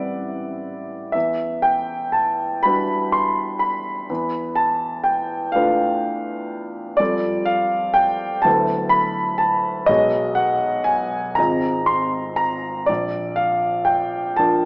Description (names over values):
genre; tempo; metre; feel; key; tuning
classical, impressionist solo piano; 41 BPM (dotted quarters); 6/8; uneven beats, rubato; unclear; A4 = 440 Hz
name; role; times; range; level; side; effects
clear grand piano; solo; 0.0-14.7 s; G#1 to C6; -18 LUFS; equal; none
room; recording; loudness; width
wet recital hall reverb, RT60 1.7 s; small speaker sound; -18 LUFS; side -27 dB against mid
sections
0.0-14.7 A section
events
none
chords
0.0 Cmaj9/A; 1.1 Em9; 4.1 Dm6/E; 7.0 Fadd9; 8.5 D69; 9.9 Bsus2; 11.4 G#6; 12.9 Bbmaj7